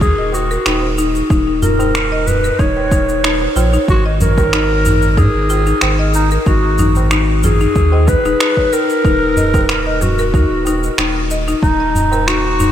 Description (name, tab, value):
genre	organic downtempo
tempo	93 BPM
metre	4/4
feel	straight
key	Eb minor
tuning	A4 = 440 Hz
part	growling clarinet	melody	0.0-12.7 s	Eb4 to Db5	-17 LUFS	equal	ping-pong delay
part	warm sub bass	bass	0.0-12.7 s	Eb1 to Ab2	-17 LUFS	equal	sidechain pumping
part	electronic kick drum	drums	0.0-11.8 s	none	-16 LUFS	equal	overdrive
part	electronic shaker and finger snaps	drums	0.0-12.7 s	none	-22 LUFS	right 1 dB	overdrive
part	buzzing marimba with medium hard mallets	arpeggios	0.2-12.7 s	Eb4 to Eb5	-19 LUFS	left 4 dB	ping-pong delay
part	tabla	percussion	0.3-12.7 s	none	-23 LUFS	right 1 dB	none
room	moderate huge ambient reverb, RT60 8.3 s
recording	dreamy mix soaked in reverb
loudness	-12 LUFS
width	side -10 dB against mid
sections	0.0-12.7 A section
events	none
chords	0.0 Eb7(no3); 3.9 Ab5; 9.0 Ebm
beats	0.01 0.66 | 1.31 1.95 2.60 3.24 | 3.89 4.53 5.18 5.82 | 6.47 7.11 7.76 8.40 | 9.05 9.69 10.34 10.98 | 11.63 12.27